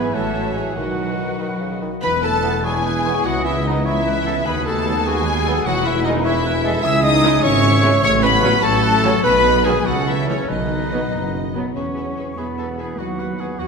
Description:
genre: classical, dramatic, fast romantic movement for symphony orchestra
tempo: 94-102 BPM (dotted quarters)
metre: 6/8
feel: rubato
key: E major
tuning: A4 = 440 Hz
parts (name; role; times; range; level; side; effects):
- rich symphonic violin section; melody; 0.0-13.7 s; C#5 to E6; -24 LUFS; left 3 dB; none
- clear oboe; second line; 0.0-13.7 s; F#4 to G#5; -29 LUFS; right 2 dB; none
- hollow concert flute; second line; 0.0-13.7 s; C#5 to E6; -28 LUFS; left 1 dB; none
- rich studio violin section; second line; 0.0-13.7 s; C#4 to E5; -30 LUFS; left 4 dB; none
- warm clarinet; second line; 0.0-13.7 s; C#4 to E5; -28 LUFS; left 1 dB; none
- rich symphonic viola section; accompaniment; 0.0-13.7 s; D#3 to C#5; -29 LUFS; right 2 dB; none
- warm bassoon; accompaniment; 0.0-1.9 s; C#3 to E3; -32 LUFS; right 2 dB; none
- clear trombone section; sustained chords; 0.0-13.7 s; C#3 to B3; -31 LUFS; right 4 dB; none
- mellow French horn section; sustained chords; 0.0-13.7 s; C#3 to B4; -26 LUFS; left 3 dB; none
- concert harp; arpeggios; 0.0-13.7 s; G#2 to C#6; -27 LUFS; left 8 dB; none
- dark trumpet section; stabs; 0.0-13.7 s; C#4 to E5; -24 LUFS; right 1 dB; none
- dark symphonic cello section; bass; 0.0-13.7 s; C#2 to C#4; -28 LUFS; right 3 dB; none
- warm symphonic double bass section; bass; 0.0-13.7 s; E1 to E2; -26 LUFS; right 3 dB; none
- mellow tuba; bass; 2.0-13.7 s; E1 to D#2; -26 LUFS; right 4 dB; none
room: wet concert hall reverb, RT60 1.9 s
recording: minimal, uncompressed stereo recording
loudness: -16 LUFS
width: side -5 dB against mid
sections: 0.0-2.0 A section; 2.0-11.8 B section; 11.8-13.7 C section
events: none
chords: 0.1 F#m7/A; 0.8 B; 2.0 E; 3.3 C#m7; 4.5 B/D#; 5.7 E; 6.8 C#m; 8.0 F#m/A; 9.2 B; 9.9 A/C#; 10.5 B; 11.8 E; 13.0 B/D#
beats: 0.14 | 0.77 1.40 | 2.03 2.65 | 3.25 3.85 | 4.46 5.06 | 5.66 6.25 | 6.84 7.43 | 8.03 8.63 | 9.24 9.86 | 10.50 11.13 | 11.76 12.38 | 12.99 13.59

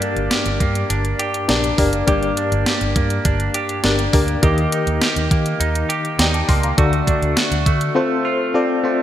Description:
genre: 1980s-style pop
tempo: 102 BPM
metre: 4/4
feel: straight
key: G minor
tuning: A4 = 441 Hz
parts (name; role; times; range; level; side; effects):
- FM electric piano with tremolo; accompaniment; 0.0-9.0 s; G2 to D6; -21 LUFS; left 3 dB; none
- direct-recorded clean electric guitar; riff; 0.0-9.0 s; A3 to G4; -23 LUFS; right 4 dB; lush chorus, digital delay
- clean 12-bit digital drum machine; drums; 0.0-7.9 s; hi-hat, kick drum, snare drum; -19 LUFS; equal; overdrive, gated reverb
- vintage muted fingered electric bass; bass; 0.2-7.9 s; F#1 to Eb3; -21 LUFS; equal; none
room: moderate lush hall reverb, RT60 2.2 s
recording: bright 1980s-style digital production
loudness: -16 LUFS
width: side -11 dB against mid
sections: 0.0-9.0 A section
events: none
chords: 0.0 Gm; 4.4 Eb; 6.8 D; 8.0 F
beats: 0.31 0.90 1.49 | 2.08 2.66 3.25 3.84 | 4.43 5.02 5.61 6.19 | 6.78 7.37 7.96 8.55

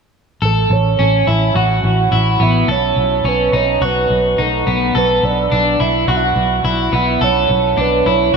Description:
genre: dream pop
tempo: 106 BPM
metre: 4/4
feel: straight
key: A major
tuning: A4 = 440 Hz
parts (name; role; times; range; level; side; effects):
- electric guitar at the edge of break-up; arpeggios; 0.4-8.4 s; B3 to A4; -17 LUFS; left 2 dB; wide subtle chorus, tape echo
- fingered electric bass; bass; 0.4-8.4 s; A1 to B1; -18 LUFS; right 1 dB; none
- soft octave-layered synth lead; melody; 0.5-8.4 s; A4 to F#5; -17 LUFS; right 5 dB; chorus, tape echo
room: wet cathedral reverb, RT60 5.0 s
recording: dreamy mix soaked in reverb, studio ambience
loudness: -12 LUFS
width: side -5 dB against mid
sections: 0.4-8.4 A section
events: none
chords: 0.4 A; 2.7 B7; 4.9 E7sus4/B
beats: | 0.42 0.98 1.55 2.12 | 2.68 3.25 3.81 4.38 | 4.95 5.51 6.08 6.64 | 7.21 7.78 8.34

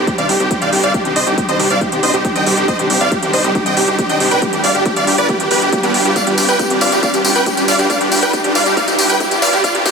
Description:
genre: uplifting trance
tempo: 138 BPM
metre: 4/4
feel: straight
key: unclear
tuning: A4 = 435 Hz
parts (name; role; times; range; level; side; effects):
- supersaw chords; melody; 0.0-9.9 s; B3 to G5; -15 LUFS; right 1 dB; sidechain pumping, ping-pong delay
- plucky analog bass; bass; 0.0-9.9 s; F1 to G2; -24 LUFS; left 1 dB; tube saturation, sidechain pumping, high-pass filter
- riser; sound effects; 2.1-9.9 s; none; -24 LUFS; equal; none
- electronic hi-hat and tambourine; drums; 0.1-9.9 s; none; -19 LUFS; left 1 dB; none
- electronic kick drum; drums; 0.1-9.9 s; none; -22 LUFS; equal; high-pass filter on kick
room: moderate recital hall reverb, RT60 1.6 s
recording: dense, heavily limited modern master, high-pass filter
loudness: -12 LUFS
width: side -5 dB against mid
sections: 0.0-9.9 A section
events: build-up 0.0-9.9; riser 2.1-9.9; drum fill 6.2-9.9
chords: 0.0 Cmadd9; 4.4 G7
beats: 0.07 0.51 | 0.94 1.38 1.81 2.25 | 2.68 3.12 3.55 3.99 | 4.42 4.86 5.29 5.73 | 6.16 6.60 7.03 7.46 | 7.90 8.34 8.77 9.20 | 9.64

